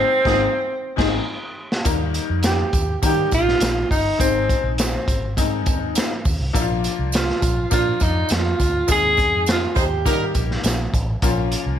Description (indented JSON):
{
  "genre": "uptempo 1960s-style soul",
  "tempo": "102 BPM",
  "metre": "4/4",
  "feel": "straight",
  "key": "Ab major",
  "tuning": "A4 = 442 Hz",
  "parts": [
    { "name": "mellow tenor saxophone", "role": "melody", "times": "0.0-10.4 s", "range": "C4 to Ab4", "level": "-20 LUFS", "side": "right 1 dB", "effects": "none" },
    { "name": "bright upright piano", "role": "accompaniment", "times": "0.0-11.8 s", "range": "Eb3 to Ab4", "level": "-26 LUFS", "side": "left 8 dB", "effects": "none" },
    { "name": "warm horn section", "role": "second line", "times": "0.3-1.1, 8.9-10.2 s", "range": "Eb3 to C5", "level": "-28 LUFS", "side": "right 2 dB", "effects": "none" },
    { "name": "vintage muted fingered electric bass", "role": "bass", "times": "0.3-11.8 s", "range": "G1 to Eb3", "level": "-24 LUFS", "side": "equal", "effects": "none" },
    { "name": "crunchy breakbeat drum kit", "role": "drums", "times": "0.3-11.7 s", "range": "crash cymbal, hi-hat, kick drum, snare drum", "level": "-22 LUFS", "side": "right 1 dB", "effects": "none" },
    { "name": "electric guitar at the edge of break-up", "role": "riff", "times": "1.0-1.2 s", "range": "C4 to Ab4", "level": "-31 LUFS", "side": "left 5 dB", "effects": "none" },
    { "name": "tambourine", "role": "percussion", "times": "1.9-11.7 s", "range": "none", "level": "-33 LUFS", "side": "right 6 dB", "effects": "none" }
  ],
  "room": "light reverb",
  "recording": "none",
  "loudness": "-17 LUFS",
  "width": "side -9 dB against mid",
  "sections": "0.0-1.9 A section; 1.9-11.8 B section",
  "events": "band accent 0.0-1.9, 8.9-11.2; drum fill 1.3-1.9",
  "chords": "0.0 Ab; 1.9 Eb; 4.2 Ab; 6.5 Bb; 8.9 Ab/Eb; 10.1 Eb; 11.2 Bbm"
}